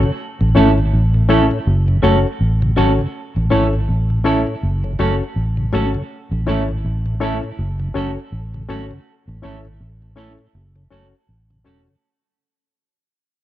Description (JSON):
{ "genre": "reggae", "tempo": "81 BPM", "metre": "4/4", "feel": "swing 58% on 16ths", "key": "unclear", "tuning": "A4 = 440 Hz", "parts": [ { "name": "mellow tonewheel organ", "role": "accompaniment", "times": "0.0-12.0 s", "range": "F#2 to C#4", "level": "-23 LUFS", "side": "left 1 dB", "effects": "slow rotary speaker" }, { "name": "barky reed electric piano", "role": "stabs", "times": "0.0-11.9 s", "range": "C#4 to C#5", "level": "-20 LUFS", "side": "left 5 dB", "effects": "overdrive, fast tremolo" }, { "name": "vintage muted fingered electric bass", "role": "bass", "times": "0.0-11.9 s", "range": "E1 to A1", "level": "-17 LUFS", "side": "equal", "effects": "none" }, { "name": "semi-hollow electric guitar", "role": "accompaniment", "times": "0.6-11.8 s", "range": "A3 to A4", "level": "-23 LUFS", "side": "right 6 dB", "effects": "spring reverb, tape echo" } ], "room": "little or no reverb", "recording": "dry, close 1970s-style studio recording", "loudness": "-15 LUFS", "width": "side -13 dB against mid", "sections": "0.0-12.0 A section", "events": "fade-out 1.4-12.0", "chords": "0.2 A; 1.7 F#m; 3.1 A; 4.6 F#m; 6.1 A; 7.6 F#m; 9.1 A; 10.5 F#m" }